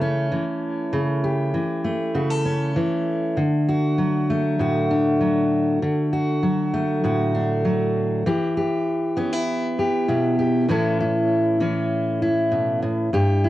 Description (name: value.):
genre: folk.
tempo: 98 BPM.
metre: 4/4.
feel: straight.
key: unclear.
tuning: A4 = 445 Hz.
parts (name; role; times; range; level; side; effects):
fingerpicked steel-string acoustic guitar; solo; 0.0-13.5 s; G2 to A4; -19 LUFS; equal; none.
room: moderate studio reverb, RT60 0.6 s.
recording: home recording on cassette.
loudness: -19 LUFS.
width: side -15 dB against mid.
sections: 0.0-8.3 A section; 8.3-13.5 B section.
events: none.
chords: 0.0 A7/C#; 3.4 D; 8.3 Em; 10.7 A.